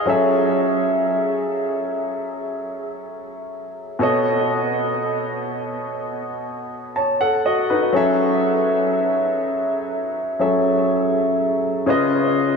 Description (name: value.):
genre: R&B.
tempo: 61 BPM.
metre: 4/4.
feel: straight.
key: F# dorian.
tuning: A4 = 440 Hz.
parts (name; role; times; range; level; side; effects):
warm concert grand piano; solo; 0.0-12.6 s; B2 to A5; -18 LUFS; equal; tape echo.
room: wet huge ambient reverb, RT60 5.1 s.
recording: dreamy mix soaked in reverb, small room ambience.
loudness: -18 LUFS.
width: side -5 dB against mid.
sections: 0.0-7.9 A section; 7.9-12.6 B section.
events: none.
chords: 0.1 F#m7; 4.0 B7; 7.9 F#m7; 11.9 C#7.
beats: | 0.07 1.05 2.04 3.02 | 4.01 4.99 5.97 6.96 | 7.94 8.92 9.91 10.89 | 11.87.